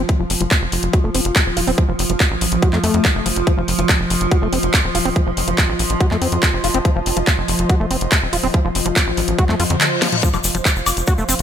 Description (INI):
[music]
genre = psychedelic trance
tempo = 142 BPM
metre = 4/4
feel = straight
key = unclear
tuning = A4 = 440 Hz
[part]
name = evolving wavetable pad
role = sustained chords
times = 0.0-11.4 s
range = F3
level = -23 LUFS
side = equal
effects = chorus, built-in reverb, sidechain pumping
[part]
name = overdriven acid bass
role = riff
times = 0.0-11.3 s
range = F3 to Gb4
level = -24 LUFS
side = moving between left 8 dB and right 6 dB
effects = auto-pan, sidechain pumping, ping-pong delay
[part]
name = tight sequencer bass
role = bass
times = 0.0-11.4 s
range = Eb1 to F2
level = -22 LUFS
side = equal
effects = tube saturation
[part]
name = airy breathy pad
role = texture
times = 0.0-11.4 s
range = F4 to F5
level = -31 LUFS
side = right 2 dB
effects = chorus, sidechain pumping
[part]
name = drum and bass drum kit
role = drums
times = 0.1-11.4 s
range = handclaps, hi-hat, snare drum, toms, woodblock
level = -20 LUFS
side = equal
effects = overdrive, small room ambience
[part]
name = electronic kick drum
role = drums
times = 0.1-11.2 s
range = none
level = -16 LUFS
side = equal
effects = overdrive, small room ambience
[part]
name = reverse cymbal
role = sound effects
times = 9.7-10.2 s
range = none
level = -26 LUFS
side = left 5 dB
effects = none
[part]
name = tube shaker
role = percussion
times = 10.2-11.4 s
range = none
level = -24 LUFS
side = left 2 dB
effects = none
[sound]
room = light reverb, digital ambience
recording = none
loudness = -15 LUFS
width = side -9 dB against mid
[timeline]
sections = 0.0-11.4 A section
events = fade-in on analog synth pad 0.0-11.4; filter sweep on acid bass 0.0-11.4; drum fill 9.4-10.2; reverse cymbal 9.7-10.2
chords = 0.0 F5